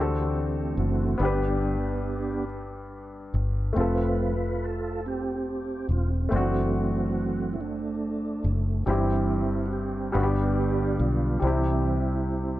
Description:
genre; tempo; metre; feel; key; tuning
slow gospel; 47 BPM (dotted quarters); 6/8; straight; C major; A4 = 440 Hz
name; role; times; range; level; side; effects
warm upright piano; accompaniment; 0.0-12.6 s; G2 to B4; -30 LUFS; left 2 dB; none
mellow tonewheel organ; sustained chords; 0.0-12.6 s; D3 to B4; -28 LUFS; right 3 dB; slow rotary speaker, chorus vibrato
fingered electric bass; bass; 0.0-12.6 s; E1 to D2; -28 LUFS; equal; none
room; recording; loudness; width
light reverb, small room ambience; none; -24 LUFS; side -15 dB against mid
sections
0.0-12.6 A section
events
tonewheel organ solo 0.0-12.6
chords
0.0 D7; 1.2 G; 3.8 F; 6.3 D7/F#; 8.9 C/G; 10.2 G; 11.4 C

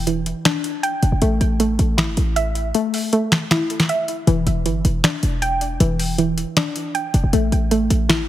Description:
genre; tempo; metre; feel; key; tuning
hip hop, trap; 157 BPM; 4/4; half-time; E minor; A4 = 440 Hz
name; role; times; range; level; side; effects
soft round pluck; arpeggios; 0.0-8.3 s; E3 to G5; -21 LUFS; equal; chorus, low-pass filter, digital delay
short 808-style bass; bass; 0.0-8.3 s; E1 to A1; -19 LUFS; equal; none
booming analog drum machine; drums; 0.1-8.2 s; finger snaps, hi-hat, snare drum; -21 LUFS; equal; none
room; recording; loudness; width
light reverb; heavily compressed radio sound, multiband compression; -17 LUFS; side -13 dB against mid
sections
0.0-8.3 A section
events
kick muted 2.7-4.3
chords
0.0 Em7; 1.2 A5; 4.3 Em7; 7.3 A5

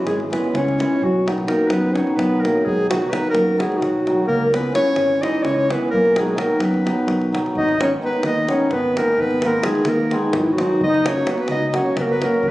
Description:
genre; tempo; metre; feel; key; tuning
balkan folk, Balkan wedding band; 257 BPM (eighths); 7/8; straight; B major; A4 = 440 Hz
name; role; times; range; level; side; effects
warm clarinet; melody; 0.0-12.5 s; E4 to D#5; -21 LUFS; equal; none
warm trombone; second line; 0.0-12.5 s; E3 to D#4; -23 LUFS; left 1 dB; none
hammered dulcimer; accompaniment; 0.0-12.5 s; D#3 to F#4; -22 LUFS; equal; none
fingered electric bass; bass; 0.0-12.5 s; F#1 to F#2; -27 LUFS; equal; none
davul; percussion; 0.1-12.5 s; none; -28 LUFS; left 1 dB; none
room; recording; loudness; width
moderate scoring stage reverb, RT60 1.6 s; recorded on a phone in the room, club reverb, compression; -16 LUFS; side -17 dB against mid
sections
0.0-7.6 A section; 7.6-12.5 B section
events
none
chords
0.0 C#m; 1.0 B; 4.3 C#m; 5.9 B; 7.6 G#m; 10.8 F#

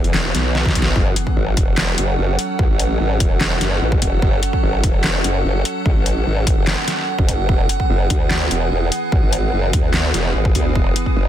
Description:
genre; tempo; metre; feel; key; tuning
heavy wobble dubstep; 147 BPM; 4/4; half-time; F# minor; A4 = 445 Hz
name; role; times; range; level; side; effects
evolving wavetable pad; sustained chords; 0.0-11.3 s; E3 to F#5; -23 LUFS; right 2 dB; chorus, built-in reverb, sidechain pumping
formant-sweep wobble bass; bass; 0.0-11.3 s; E1 to D2; -19 LUFS; equal; chorus, overdrive
dubstep drum kit; drums; 0.0-11.0 s; handclaps, hi-hat, snare drum; -21 LUFS; left 1 dB; none
electronic kick drum; drums; 0.7-11.1 s; none; -18 LUFS; equal; none
room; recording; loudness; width
little or no reverb; dense, heavily limited modern master; -15 LUFS; side -11 dB against mid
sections
0.0-11.3 A section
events
drum fill 0.6-1.0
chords
0.0 Eadd9; 1.0 F#m; 7.5 Eadd9

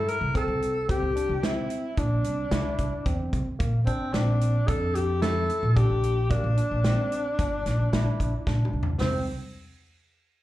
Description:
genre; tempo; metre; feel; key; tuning
progressive instrumental, band music in an uneven meter; 111 BPM; 5/4; straight; unclear; A4 = 437 Hz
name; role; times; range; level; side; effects
breathy tenor saxophone; melody; 0.0-9.3 s; C4 to Bb4; -28 LUFS; left 1 dB; slapback echo
barky tine electric piano; arpeggios; 0.0-9.3 s; Bb3 to E4; -36 LUFS; equal; medium stereo tremolo, slapback echo
upright bass; bass; 0.0-9.3 s; G1 to F2; -26 LUFS; equal; none
natural country drum kit; drums; 0.1-9.1 s; hi-hat, kick drum, snare drum, toms; -29 LUFS; equal; none
room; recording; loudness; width
light reverb; live gig heard through the venue's PA, club reverb; -23 LUFS; side -15 dB against mid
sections
0.0-9.0 A section; 9.0-10.4 B section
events
drum fill 8.5-9.0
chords
0.0 Cadd9; 3.6 Bb; 9.0 N.C.

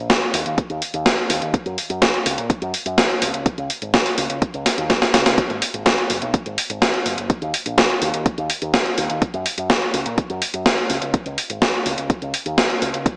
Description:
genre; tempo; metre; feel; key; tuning
italo disco; 125 BPM; 4/4; straight; unclear; A4 = 440 Hz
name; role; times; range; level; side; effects
picked electric bass with an envelope filter; bass; 0.0-13.0 s; F#1 to A#2; -26 LUFS; equal; none
electronic kick drum; drums; 0.1-13.2 s; none; -20 LUFS; equal; overdrive
gated 80s digital drum machine; drums; 0.1-13.2 s; hi-hat, snare drum; -18 LUFS; equal; gated reverb, gated reverb snare
room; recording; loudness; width
light reverb; small speaker sound; -17 LUFS; side -28 dB against mid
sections
0.0-13.2 A section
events
drum fill 4.7-5.4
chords
none

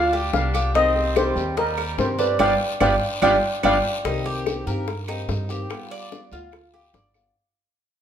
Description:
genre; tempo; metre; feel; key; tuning
latin, Cuban son and guajira; 145 BPM; 4/4; straight; unclear; A4 = 440 Hz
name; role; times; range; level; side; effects
steel pan; melody; 0.0-3.8 s; Bb4 to G5; -21 LUFS; equal; none
bright trumpet; second line; 0.0-3.7 s; G3 to D4; -33 LUFS; right 5 dB; none
Cuban tres; arpeggios; 0.0-7.3 s; D4 to Eb5; -26 LUFS; right 3 dB; none
upright bass; bass; 0.0-7.3 s; G1 to G2; -28 LUFS; equal; none
bongos; percussion; 0.1-7.4 s; none; -28 LUFS; left 5 dB; none
nylon-string guitar; accompaniment; 0.3-7.4 s; C3 to G4; -30 LUFS; left 2 dB; none
guiro; percussion; 0.3-7.4 s; none; -37 LUFS; left 4 dB; none
claves; percussion; 0.5-7.4 s; none; -36 LUFS; right 7 dB; none
room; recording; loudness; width
wet large studio reverb, RT60 1.1 s; band playing live in one room; -19 LUFS; side -9 dB against mid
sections
0.0-4.0 A section; 4.0-7.4 B section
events
band accent 2.4-4.0; drum fill 3.4-4.0; fade-out 4.0-7.4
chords
0.0 G7; 0.7 Cm7; 2.4 G7; 4.0 Cm7; 5.7 G7

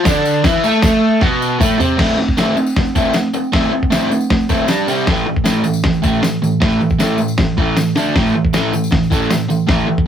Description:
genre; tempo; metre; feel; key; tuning
garage rock duo or trio; 156 BPM; 4/4; straight; A minor; A4 = 442 Hz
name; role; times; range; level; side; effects
crunchy overdriven guitar; riff; 0.0-10.0 s; A2 to A4; -14 LUFS; right 1 dB; none
lo-fi sampler-style drum kit; drums; 0.1-10.1 s; crash cymbal, hi-hat, kick drum, snare drum, toms; -17 LUFS; equal; none
tambourine; percussion; 0.1-9.8 s; none; -33 LUFS; left 4 dB; none
room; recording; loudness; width
light reverb; rough rehearsal-room recording, warm saturation; -13 LUFS; side -9 dB against mid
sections
0.0-2.0 A section; 2.0-10.1 B section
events
drum fill 1.2-2.0, 8.0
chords
0.0 Am; 4.7 G5; 4.9 C5; 5.1 A5; 8.0 D5; 8.2 A5

